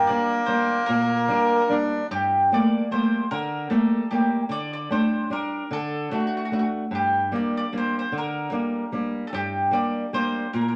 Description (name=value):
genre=italian folk, Italian serenade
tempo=150 BPM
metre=3/4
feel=straight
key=G harmonic minor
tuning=A4 = 445 Hz
part: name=mandolin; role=melody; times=0.0-10.7 s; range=F#4 to D5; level=-29 LUFS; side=equal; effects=none
part: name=accordion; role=second line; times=0.0-2.1 s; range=Bb3 to D4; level=-24 LUFS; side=equal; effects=none
part: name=flamenco guitar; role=accompaniment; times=0.0-10.8 s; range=G2 to F#4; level=-27 LUFS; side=equal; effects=none
room=wet studio reverb, RT60 0.6 s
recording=none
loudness=-24 LUFS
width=mono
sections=0.0-2.1 A section; 2.1-10.8 A section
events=none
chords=0.0 Gm; 2.1 Gmadd9; 4.5 Dsus4; 5.7 D; 6.9 Gm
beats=0.08 0.48 | 0.88 1.28 1.69 | 2.10 2.50 2.90 | 3.30 3.70 4.10 | 4.50 4.90 5.30 | 5.70 6.10 6.51 | 6.92 7.32 7.72 | 8.12 8.52 8.92 | 9.32 9.72 10.12 | 10.53